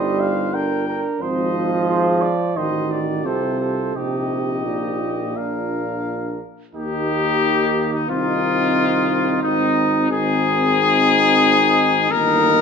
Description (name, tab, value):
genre	classical, brass quintet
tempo	89 BPM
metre	4/4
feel	straight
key	Eb major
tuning	A4 = 438 Hz
part	warm trumpet	melody	0.0-12.6 s	Eb4 to G5	-20 LUFS	left 6 dB	none
part	mellow trumpet	second line	0.0-12.6 s	Eb4 to D5	-26 LUFS	right 6 dB	none
part	clear trombone	accompaniment	0.0-12.6 s	Bb2 to G3	-24 LUFS	right 3 dB	none
part	warm French horn	accompaniment	0.0-12.6 s	Bb3 to Ab4	-26 LUFS	left 1 dB	none
part	bright bass trombone	bass	0.0-12.6 s	G1 to Eb2	-26 LUFS	right 1 dB	none
room	moderate recital hall reverb, RT60 1.5 s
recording	minimal, uncompressed stereo recording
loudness	-17 LUFS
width	side -6 dB against mid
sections	0.0-6.8 A section; 6.8-12.6 B section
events	none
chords	0.0 Eb/G; 1.2 Ab; 2.6 Adim7; 4.0 Eb/Bb; 5.4 Bb; 6.8 Eb; 8.1 Cm; 9.4 Ab; 12.1 Eb/G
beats	0.54 | 1.21 1.89 2.56 3.25 | 3.96 4.67 5.37 6.06 | 6.76 7.43 8.09 8.76 | 9.43 10.11 10.78 11.45 | 12.11